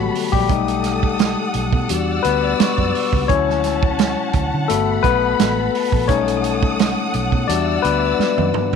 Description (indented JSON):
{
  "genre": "lush 1970s-style soul",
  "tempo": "86 BPM",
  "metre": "4/4",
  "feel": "swing 54% on 16ths",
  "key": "unclear",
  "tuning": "A4 = 440 Hz",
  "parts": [
    { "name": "barky tine electric piano", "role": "accompaniment", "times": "0.0-8.8 s", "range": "D3 to D5", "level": "-19 LUFS", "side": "left 12 dB", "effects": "none" },
    { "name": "warm studio string section", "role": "sustained chords", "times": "0.0-8.8 s", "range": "C#4 to E6", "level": "-24 LUFS", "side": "left 1 dB", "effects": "none" },
    { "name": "vintage muted fingered electric bass", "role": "bass", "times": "0.0-8.8 s", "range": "G1 to D3", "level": "-24 LUFS", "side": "right 2 dB", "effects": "none" },
    { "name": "vintage drum kit", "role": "drums", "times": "0.2-8.8 s", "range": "hi-hat, kick drum, snare drum, toms", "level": "-20 LUFS", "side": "right 6 dB", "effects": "none" },
    { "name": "vibraphone with medium hard mallets", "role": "texture", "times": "2.6-8.8 s", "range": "D5 to E6", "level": "-30 LUFS", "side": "right 2 dB", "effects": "none" }
  ],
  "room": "studio ambience",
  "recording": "1960s-style stereo with parts hard left and right",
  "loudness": "-16 LUFS",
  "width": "side -6 dB against mid",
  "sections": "0.0-8.8 A section",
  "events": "tine electric piano solo 0.0-8.8; drum fill 8.2-8.8",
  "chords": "0.5 B7b13; 1.9 Em7; 3.3 Dmaj7; 4.7 Gmaj9; 6.1 B7b13; 7.5 Em7"
}